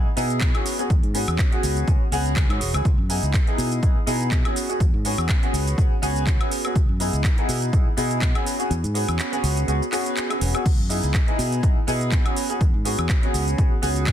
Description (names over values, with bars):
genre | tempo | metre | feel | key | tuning
filtered disco house | 123 BPM | 4/4 | swing 55% on 16ths | unclear | A4 = 440 Hz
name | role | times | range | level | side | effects
clear baby grand piano | accompaniment | 0.0-14.1 s | B3 to G#4 | -26 LUFS | equal | phaser, sidechain pumping
fingered electric bass | bass | 0.0-14.1 s | E1 to B2 | -25 LUFS | equal | sidechain pumping
house drum kit | drums | 0.2-14.1 s | crash cymbal, handclaps, hi-hat, shaker, woodblock | -28 LUFS | right 1 dB | sidechain pumping on hats, sidechain pumping on perc, soft clipping on snare, sidechain pumping on cymbals
electronic kick drum | drums | 0.4-14.1 s | none | -20 LUFS | equal | none
room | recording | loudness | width
little or no reverb | dense, heavily limited modern master | -19 LUFS | side -10 dB against mid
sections
0.0-14.1 A section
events
kick drops out 8.7-10.7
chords
0.0 C#m7; 0.7 E6; 2.9 C#m7; 4.6 E6 (rootless); 6.8 C#m7; 8.5 E6; 10.7 C#m7; 12.4 E6 (rootless)